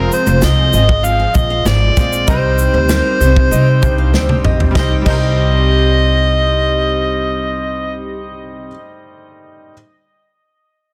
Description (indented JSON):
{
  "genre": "acoustic pop",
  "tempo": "97 BPM",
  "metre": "4/4",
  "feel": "straight",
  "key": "C minor",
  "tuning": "A4 = 440 Hz",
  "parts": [
    { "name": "overdriven harmonica", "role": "melody", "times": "0.0-8.0 s", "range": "Bb4 to F5", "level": "-20 LUFS", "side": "equal", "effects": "tape echo" },
    { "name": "bright upright piano", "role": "accompaniment", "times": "0.0-9.7 s", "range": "G3 to C5", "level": "-28 LUFS", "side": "equal", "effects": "none" },
    { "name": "fingerpicked steel-string acoustic guitar", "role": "accompaniment", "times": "0.0-8.8 s", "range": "C3 to Ab4", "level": "-24 LUFS", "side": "equal", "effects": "double-tracked" },
    { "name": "nylon-string guitar", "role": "arpeggios", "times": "0.0-6.6 s", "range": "Bb4 to F5", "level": "-28 LUFS", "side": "equal", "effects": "tape echo" },
    { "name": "upright bass", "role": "bass", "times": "0.0-8.7 s", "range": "F1 to C3", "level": "-17 LUFS", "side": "equal", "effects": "none" },
    { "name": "natural country drum kit", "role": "drums", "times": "0.1-5.2 s", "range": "crash cymbal, kick drum, shaker, snare drum, toms", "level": "-19 LUFS", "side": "equal", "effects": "none" }
  ],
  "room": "small room ambience",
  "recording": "dense, heavily limited modern master",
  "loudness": "-13 LUFS",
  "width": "mono",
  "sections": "0.0-4.8 A section; 4.8-7.2 B section",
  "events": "drum fill 4.1-4.8",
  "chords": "0.0 Fm; 2.3 Cm"
}